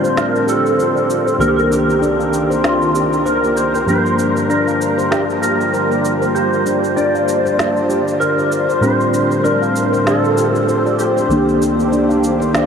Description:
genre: organic downtempo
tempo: 97 BPM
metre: 4/4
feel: swing 57% on 16ths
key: G minor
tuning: A4 = 440 Hz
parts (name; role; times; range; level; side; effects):
- clean lap steel guitar; melody; 0.0-12.7 s; F4 to D5; -18 LUFS; right 1 dB; ensemble chorus, analog delay
- muted felt-like synth keys; accompaniment; 0.0-12.7 s; C2 to D4; -20 LUFS; left 1 dB; chorus, analog delay
- muted studio string section; sustained chords; 0.0-12.7 s; A2 to C5; -21 LUFS; right 1 dB; low-pass filter
- handpan; arpeggios; 0.0-12.7 s; D4 to F5; -19 LUFS; left 1 dB; low-pass filter, analog delay
- electronic shaker and snare drum; drums; 0.0-12.7 s; none; -26 LUFS; right 1 dB; none
room: wet huge ambient reverb, RT60 6.9 s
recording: dreamy mix soaked in reverb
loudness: -13 LUFS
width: side -6 dB against mid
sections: 0.0-12.7 A section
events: filter sweep on handpan 0.0-12.7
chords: 0.0 F6/A; 1.4 Cm7; 3.9 Gm7; 8.8 F6/A; 11.3 Cm7

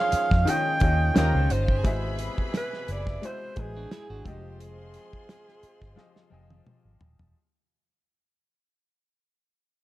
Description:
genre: lush 1970s-style soul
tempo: 87 BPM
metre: 4/4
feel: swing 54% on 16ths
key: F minor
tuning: A4 = 442 Hz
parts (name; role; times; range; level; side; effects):
- warm alto saxophone; melody; 0.0-6.7 s; G4 to G5; -29 LUFS; right 2 dB; none
- clear studio string section; second line; 0.0-7.0 s; C4 to C6; -42 LUFS; equal; none
- clear grand piano; accompaniment; 0.0-7.4 s; Eb3 to G5; -33 LUFS; left 4 dB; none
- mellow horn section; stabs; 0.0-7.0 s; B2 to Ab4; -38 LUFS; left 4 dB; none
- vintage muted fingered electric bass; bass; 0.1-7.3 s; Eb1 to F2; -27 LUFS; equal; none
- damped 70s drum kit; drums; 0.1-7.3 s; hi-hat, kick drum, snare drum, toms; -26 LUFS; equal; none
- clean electric guitar; riff; 3.8-4.4 s; D4 to Ab4; -51 LUFS; right 5 dB; spring reverb
room: small room ambience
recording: dark, warm production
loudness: -22 LUFS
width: side -16 dB against mid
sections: 0.0-7.3 A section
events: fade-out 0.0-7.3; drum fill 6.0-7.3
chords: 0.0 Eb9sus4; 1.2 Eb9; 1.8 Ab7alt; 4.3 Fm9

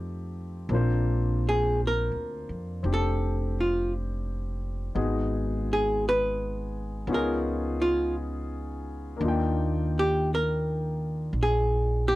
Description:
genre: jazz ballad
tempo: 56 BPM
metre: 4/4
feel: swing 67% on 8ths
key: unclear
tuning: A4 = 441 Hz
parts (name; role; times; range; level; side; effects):
- archtop guitar, miked and amplified; melody; 0.0-12.2 s; F4 to Cb5; -27 LUFS; equal; none
- warm concert grand piano; accompaniment; 0.0-12.2 s; Ab3 to G5; -32 LUFS; left 3 dB; none
- upright bass; bass; 0.0-12.2 s; F1 to F2; -28 LUFS; equal; none
room: little or no reverb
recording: dry, close 1970s-style studio recording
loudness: -25 LUFS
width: side -17 dB against mid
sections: 0.7-12.2 A section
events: hollow-body jazz guitar solo 0.7-12.2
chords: 0.0 F7; 0.7 Bbadd9; 5.0 Abm7; 7.1 Db9; 9.2 Ebmaj7

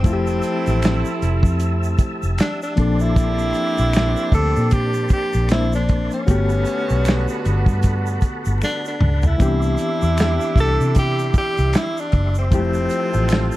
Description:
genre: R&B, neo-soul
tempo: 77 BPM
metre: 4/4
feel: swing 58% on 16ths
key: C major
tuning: A4 = 440 Hz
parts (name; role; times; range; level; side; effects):
- breathy tenor saxophone; melody; 0.0-13.6 s; C4 to A4; -24 LUFS; equal; none
- barky reed electric piano; accompaniment; 0.0-13.6 s; E3 to C5; -25 LUFS; left 4 dB; overdrive, fast tremolo
- tonewheel organ; sustained chords; 0.0-13.6 s; Bb3 to E6; -31 LUFS; equal; slow rotary speaker, chorus vibrato
- warm horn section; stabs; 0.0-13.6 s; D3 to G4; -28 LUFS; right 6 dB; none
- vintage muted fingered electric bass; bass; 0.0-13.5 s; F1 to C3; -20 LUFS; equal; none
- warm soul drum kit; drums; 0.0-13.5 s; finger snaps, hi-hat, kick drum, snare drum, toms; -18 LUFS; equal; none
- tube shaker and finger snaps; percussion; 0.1-13.6 s; none; -38 LUFS; equal; none
room: little or no reverb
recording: dark, warm production, vinyl crackle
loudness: -16 LUFS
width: side -16 dB against mid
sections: 0.0-13.6 A section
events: drum fill 8.6-9.4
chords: 0.0 Fmaj9; 2.8 Bbmaj9; 6.3 Gmaj9; 9.4 Cmaj9; 12.5 Fmaj9

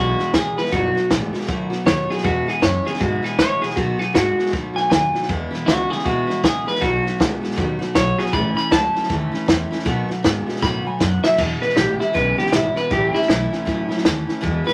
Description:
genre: rockabilly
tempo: 158 BPM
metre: 4/4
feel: swing 62% on 8ths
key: E major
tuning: A4 = 435 Hz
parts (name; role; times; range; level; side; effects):
- electric guitar through a small old amp; melody; 0.0-14.7 s; E4 to B5; -23 LUFS; equal; none
- picked steel-string acoustic guitar; accompaniment; 0.0-14.7 s; E2 to F#4; -31 LUFS; equal; none
- electric guitar through a small old amp; riff; 0.0-14.7 s; E2 to G#3; -29 LUFS; equal; none
- upright bass; bass; 0.0-14.7 s; F#1 to B2; -29 LUFS; equal; none
- compact cocktail drum kit; drums; 0.2-14.7 s; crash cymbal, hi-hat, kick drum, snare drum; -24 LUFS; equal; none
room: moderate studio ambience, RT60 0.5 s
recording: vinyl crackle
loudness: -20 LUFS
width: mono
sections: 0.0-11.4 A section; 11.4-14.7 B section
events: drum fill 10.6-11.4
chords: 0.0 E; 0.7 B7; 2.2 E; 3.8 B7; 5.3 E; 6.8 B7; 8.3 A; 9.9 B7; 11.4 E; 12.9 A

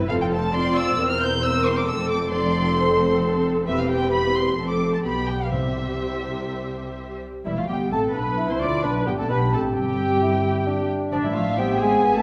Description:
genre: quick classical-period movement for symphony orchestra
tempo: 131 BPM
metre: 4/4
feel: rubato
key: C major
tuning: A4 = 438 Hz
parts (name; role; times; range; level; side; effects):
- muted chamber violin section; second line; 0.0-12.2 s; G4 to D6; -34 LUFS; equal; none
- muted studio viola section; accompaniment; 0.0-12.2 s; G3 to D5; -29 LUFS; equal; none
- dark French horn section; sustained chords; 0.0-7.2 s; B3 to Bb4; -30 LUFS; equal; none
- muted chamber cello section; bass; 0.0-12.2 s; E2 to D4; -33 LUFS; equal; none
- muted symphonic double bass section; bass; 0.0-12.2 s; E1 to D2; -30 LUFS; equal; none
- muted chamber violin section; melody; 0.1-12.2 s; E4 to G6; -30 LUFS; equal; none
- timpani; percussion; 5.5-6.2 s; C3; -32 LUFS; equal; none
- small flute group; second line; 7.5-12.2 s; D5 to D6; -30 LUFS; equal; none
- warm clarinet; second line; 7.5-12.2 s; F3 to F4; -30 LUFS; equal; none
- mellow bassoon; accompaniment; 8.4-12.2 s; B3 to G4; -30 LUFS; equal; none
room: wet concert hall reverb, RT60 1.9 s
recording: none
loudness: -22 LUFS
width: mono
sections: 0.0-7.5 A section; 7.5-12.2 A section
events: none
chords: 0.1 F; 1.0 C7/E; 1.9 F; 3.7 C/E; 4.6 Dm7/F; 5.0 G/B; 5.5 C; 7.5 G13/E; 8.4 G/B; 9.3 C; 11.1 Am

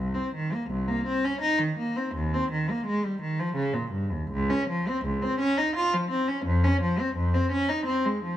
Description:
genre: classical, baroque-style suite movement for unaccompanied cello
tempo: 84 BPM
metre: 3/4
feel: rubato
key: unclear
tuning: A4 = 439 Hz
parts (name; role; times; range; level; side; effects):
- rich cello; solo; 0.0-8.4 s; C2 to F4; -24 LUFS; equal; none
room: moderate recital hall reverb, RT60 1.7 s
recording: close, detailed microphones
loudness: -24 LUFS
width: side -12 dB against mid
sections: 0.0-8.4 A section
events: none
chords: none

